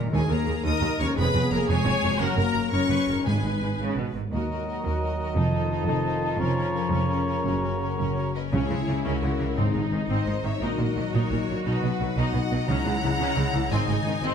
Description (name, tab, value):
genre	cinematic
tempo	115 BPM (dotted quarters)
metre	6/8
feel	straight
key	C# dorian from 8.5 s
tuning	A4 = 440 Hz
part	concert harp	arpeggios	0.0-14.3 s	E#2 to D#5	-32 LUFS	left 11 dB	none
part	clear studio cello section	bass	0.0-14.3 s	D#2 to C#3	-29 LUFS	right 3 dB	none
part	clear symphonic double bass section	bass	0.0-14.3 s	E#1 to D#2	-30 LUFS	right 4 dB	none
part	rich symphonic violin section	melody	0.1-14.3 s	G#4 to D#6	-35 LUFS	left 4 dB	none
part	warm symphonic violin section	second line	0.1-14.3 s	D#4 to F#5	-35 LUFS	left 1 dB	none
part	clear symphonic viola section	accompaniment	0.1-14.3 s	D#3 to C#5	-32 LUFS	equal	none
part	mellow French horn section	sustained chords	0.1-14.1 s	F#3 to A#4	-31 LUFS	left 4 dB	none
part	timpani	percussion	0.1-0.6, 3.3-4.8, 8.5-10.1, 12.7-13.2 s	G#2 to D#3	-31 LUFS	right 1 dB	none
part	clear clarinet	second line	4.3-8.3 s	F4 to F#4	-36 LUFS	left 2 dB	none
part	mellow hollow silver concert flute	second line	4.3-8.4 s	A5 to A#5	-33 LUFS	left 1 dB	none
part	warm cor anglais	second line	4.3-8.3 s	C#5 to D#5	-33 LUFS	right 1 dB	none
part	bright trombone section	sustained chords	4.3-8.3 s	C#3 to F#3	-35 LUFS	right 6 dB	none
room	moderate recital hall reverb, RT60 1.4 s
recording	none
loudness	-23 LUFS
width	side -7 dB against mid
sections	0.0-4.3 A section; 4.3-8.5 B section; 8.5-14.3 C section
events	none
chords	0.1 D#sus4; 1.2 C#/E#; 2.2 F#; 3.3 G#m; 4.3 D#m; 5.4 F7; 6.4 A#m/E#; 7.5 F#; 8.5 C#m; 9.6 G#; 10.6 D#m/A#; 11.7 B; 12.7 C#m; 13.7 G#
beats	| 0.13 0.65 | 1.17 1.69 | 2.21 2.73 | 3.26 3.80 | 4.33 4.85 | 5.37 5.88 | 6.40 6.92 | 7.45 7.99 | 8.53 9.06 | 9.57 10.10 | 10.62 11.14 | 11.65 12.17 | 12.69 13.20 | 13.71 14.23